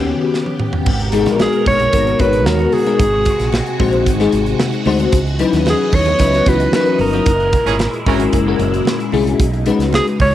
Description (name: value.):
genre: polished 1980s jazz-funk pop.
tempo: 112 BPM.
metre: 4/4.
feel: straight.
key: G# minor.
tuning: A4 = 440 Hz.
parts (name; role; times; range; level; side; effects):
breathy alto saxophone; melody; 0.0-10.3 s; G4 to C#5; -17 LUFS; right 1 dB; none.
bell-like FM electric piano; accompaniment; 0.0-10.3 s; D#3 to C#5; -17 LUFS; left 6 dB; tremolo, ensemble chorus, cassette tape.
phased string machine; sustained chords; 0.0-10.3 s; A#2 to D#5; -23 LUFS; right 2 dB; ensemble chorus, phaser, cassette tape.
fingered electric bass; bass; 0.0-10.3 s; F#1 to D#2; -19 LUFS; right 1 dB; none.
modern studio drum kit; drums; 0.3-10.3 s; crash cymbal, hi-hat, kick drum, snare drum, toms; -20 LUFS; right 1 dB; cassette tape.
congas; percussion; 1.1-10.3 s; none; -29 LUFS; right 9 dB; none.
clear horn section; second line; 7.7-8.2 s; E3 to A#4; -24 LUFS; right 9 dB; cassette tape, tape echo.
room: light reverb, studio reverb.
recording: home recording on cassette.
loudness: -12 LUFS.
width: side -12 dB against mid.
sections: 0.9-10.3 A section.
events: FM electric piano fill 0.0-0.9; band accent 0.0-0.9, 7.3-9.4; drum fill 0.3-0.9.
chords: 0.0 D#7alt; 0.9 G#m9; 3.0 G#7; 5.1 C#m11; 7.3 F#9; 9.4 B69.